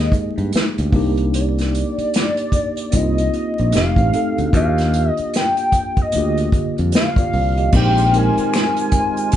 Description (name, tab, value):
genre	R&B, neo-soul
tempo	75 BPM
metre	4/4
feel	swing 61% on 16ths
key	Eb major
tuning	A4 = 440 Hz
part	hollow square lead	melody	0.0-9.4 s	D5 to Ab5	-21 LUFS	left 1 dB	chorus
part	mellow tine electric piano	accompaniment	0.0-9.4 s	D3 to F5	-22 LUFS	equal	medium stereo tremolo
part	fingered electric bass	bass	0.0-9.4 s	F1 to G2	-19 LUFS	equal	none
part	unplugged drum kit	drums	0.1-9.4 s	crash cymbal, hi-hat, kick drum, snare drum	-20 LUFS	equal	none
part	tonewheel organ	sustained chords	7.7-9.4 s	Eb3 to F4	-27 LUFS	equal	slow rotary speaker, overdrive, chorus vibrato
part	egg shaker and finger snaps	percussion	7.7-9.4 s	none	-32 LUFS	left 5 dB	none
room	light reverb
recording	band playing live in one room, vinyl crackle, nothing above 10.6 kHz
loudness	-15 LUFS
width	side -11 dB against mid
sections	0.0-7.7 A section; 7.7-9.4 B section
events	none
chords	0.0 Fm11 (rootless); 0.9 Cm9; 3.7 F7; 4.5 Ebmaj9; 7.7 Bb13sus4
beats	0.53 | 1.33 2.13 2.93 3.73 | 4.53 5.33 6.13 6.93 | 7.73 8.53 9.33